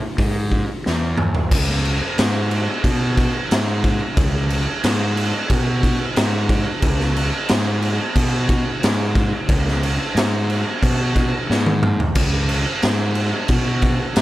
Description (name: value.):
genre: stoner and doom metal.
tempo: 90 BPM.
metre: 4/4.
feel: straight.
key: C# minor.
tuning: A4 = 441 Hz.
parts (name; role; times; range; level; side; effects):
fuzz fingered electric bass; bass; 0.2-14.2 s; C#2 to B2; -21 LUFS; equal; overdrive.
raw garage drum kit; drums; 0.2-14.2 s; crash cymbal, hi-hat, kick drum, snare drum, toms; -19 LUFS; equal; none.
room: little or no reverb.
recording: none.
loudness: -17 LUFS.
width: side -16 dB against mid.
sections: 0.0-1.5 A section; 1.5-14.2 B section.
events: drum fill 0.8-1.5, 11.5-12.2.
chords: none.